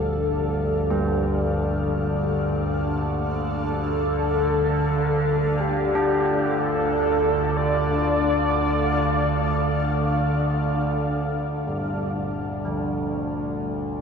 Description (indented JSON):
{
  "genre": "dark ambient drone",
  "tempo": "free time",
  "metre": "none",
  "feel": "none",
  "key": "unclear",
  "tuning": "A4 = 440 Hz",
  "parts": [
    { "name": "mellow horn-like synth lead", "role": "melody", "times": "0.0-10.5 s", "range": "G4 to D5", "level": "-26 LUFS", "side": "left 1 dB", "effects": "lush chorus, ping-pong delay" },
    { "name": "granular cloud pad", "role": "sustained chords", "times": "0.0-11.5 s", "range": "D4 to F5", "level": "-29 LUFS", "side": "left 1 dB", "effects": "built-in reverb" },
    { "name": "carillon bells", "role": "arpeggios", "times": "0.0-14.0 s", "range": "G2 to D4", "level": "-29 LUFS", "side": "equal", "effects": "ping-pong delay" },
    { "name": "overtone-sweeping drone", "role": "drone", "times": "0.0-14.0 s", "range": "D2 to D3", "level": "-25 LUFS", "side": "right 1 dB", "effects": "chorus, built-in reverb" }
  ],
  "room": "wet huge ambient reverb, RT60 7.2 s",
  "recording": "none",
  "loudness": "-21 LUFS",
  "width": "side -6 dB against mid",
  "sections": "0.0-11.5 A section; 11.5-14.0 B section",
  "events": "fade-in on ambient pad 0.0-11.5",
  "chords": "0.0 Dm"
}